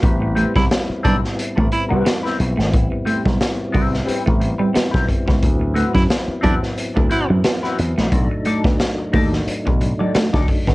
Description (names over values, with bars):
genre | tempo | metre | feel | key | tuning
funk | 89 BPM | 4/4 | swing 56% on 16ths | unclear | A4 = 440 Hz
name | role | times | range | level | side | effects
percussive tonewheel organ | sustained chords | 0.0-10.7 s | F#3 to E4 | -26 LUFS | left 1 dB | fast rotary speaker
slap bass with an envelope filter | bass | 0.0-10.7 s | G#1 to F#2 | -20 LUFS | equal | none
raw garage drum kit | drums | 0.0-10.7 s | hi-hat, kick drum, snare drum | -19 LUFS | equal | none
semi-hollow electric guitar | riff | 0.2-10.7 s | F#3 to B3 | -22 LUFS | right 2 dB | none
semi-hollow electric guitar | accompaniment | 0.4-10.7 s | C4 to D5 | -25 LUFS | left 3 dB | wah
raspy baritone saxophone | second line | 0.6-1.8, 5.9-7.3 s | D4 to E4 | -25 LUFS | right 2 dB | tape echo
room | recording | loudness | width
light reverb, small room reverb | home recording on cassette | -16 LUFS | side -20 dB against mid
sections
0.0-10.7 A section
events
none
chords
0.0 Am9; 5.4 D13; 8.1 B7#9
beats
| 0.03 0.70 1.38 2.06 | 2.73 3.40 4.08 4.75 | 5.42 6.10 6.77 7.45 | 8.12 8.80 9.47 10.15